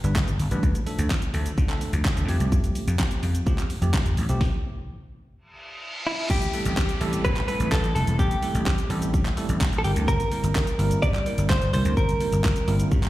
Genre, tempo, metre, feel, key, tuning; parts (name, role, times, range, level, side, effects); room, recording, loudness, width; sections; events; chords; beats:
dance-pop; 127 BPM; 4/4; straight; A minor; A4 = 439 Hz
bell-like tine electric piano; accompaniment; 0.0-12.9 s; F3 to B4; -31 LUFS; right 2 dB; fast stereo tremolo, sidechain pumping, slapback echo
vintage slap bass; bass; 0.0-13.1 s; E1 to F3; -24 LUFS; equal; sidechain pumping
pop drum kit; drums; 0.0-13.1 s; crash cymbal, handclaps, hi-hat, kick drum, shaker, snare drum; -24 LUFS; equal
reverse cymbal and downlifter; sound effects; 5.5-10.1 s; -36 LUFS; equal; slapback echo
direct-recorded clean electric guitar; melody; 6.1-12.9 s; E4 to D5; -28 LUFS; equal; tape echo, slapback echo
digital ambience; live gig heard through the venue's PA, recital hall reverb; -21 LUFS; side -16 dB against mid
0.0-6.3 A section; 6.3-13.1 B section
stop 4.4-6.3; reverse cymbal 5.5-6.3
0.0 G; 0.6 Dm; 2.3 Fadd9; 4.4 N.C.; 6.3 Am7; 9.8 C7/G
0.16 | 0.63 1.10 1.58 2.05 | 2.52 2.99 3.47 3.94 | 4.41 4.88 5.36 5.83 | 6.30 6.77 7.25 7.72 | 8.19 8.66 9.13 9.61 | 10.08 10.55 11.03 11.50 | 11.97 12.44 12.91